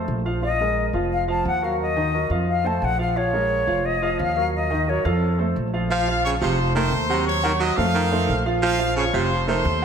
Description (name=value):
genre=latin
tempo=176 BPM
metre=4/4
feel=straight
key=Bb harmonic minor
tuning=A4 = 441 Hz
part: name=warm grand piano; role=accompaniment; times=0.0-9.8 s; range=Eb3 to Gb5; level=-25 LUFS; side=right 2 dB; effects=lush chorus
part: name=upright bass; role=bass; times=0.0-9.8 s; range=F1 to F2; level=-25 LUFS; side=equal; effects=none
part: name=concert flute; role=melody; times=0.4-5.6 s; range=A4 to A5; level=-24 LUFS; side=left 3 dB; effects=ping-pong delay
part: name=bright trumpet section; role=melody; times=5.9-9.8 s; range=C5 to Eb6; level=-24 LUFS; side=left 2 dB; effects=ping-pong delay
part: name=bright baritone saxophone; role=second line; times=5.9-9.7 s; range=C3 to Gb3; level=-24 LUFS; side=right 4 dB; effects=none
room=moderate lush hall reverb, RT60 2.4 s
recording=dreamy mix soaked in reverb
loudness=-19 LUFS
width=side -7 dB against mid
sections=0.0-5.9 A section; 5.9-9.8 B section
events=none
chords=0.4 Bb5; 1.1 F7b9; 1.8 Ebm; 2.5 F; 3.2 Bbm7; 3.8 Ebmadd9/F; 4.5 Ebm; 5.2 F; 5.9 Bbmadd9; 6.6 F7b9; 7.3 Ebm7; 7.9 F7; 8.6 Bbmadd9; 9.3 F7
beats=0.08 | 0.42 0.76 1.11 1.45 | 1.79 2.13 2.48 2.82 | 3.16 3.50 3.85 4.19 | 4.53 4.87 5.21 5.56 | 5.90 6.24 6.58 6.92 | 7.26 7.60 7.94 8.28 | 8.62 8.96 9.30 9.64